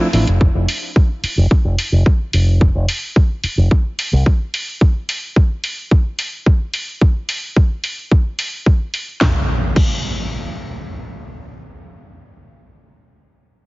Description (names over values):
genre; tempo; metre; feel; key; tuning
nu-disco, nu disco; 109 BPM; 4/4; straight; unclear; A4 = 443 Hz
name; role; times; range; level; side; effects
fingered electric bass with an envelope filter; bass; 0.1-4.2 s; F1 to C2; -14 LUFS; equal; sidechain pumping
house drum kit; drums; 0.1-9.9 s; crash cymbal, hi-hat, snare drum; -22 LUFS; equal; none
electronic kick drum; drums; 0.4-9.9 s; none; -13 LUFS; equal; none
impact; sound effects; 9.2-12.9 s; none; -23 LUFS; equal; none
room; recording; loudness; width
digital ambience; heavily compressed radio sound, multiband compression, nothing above 7.5 kHz; -14 LUFS; side -22 dB against mid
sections
0.0-9.2 A section; 9.2-11.4 B section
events
filter sweep on fingered electric bass 0.0-4.8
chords
none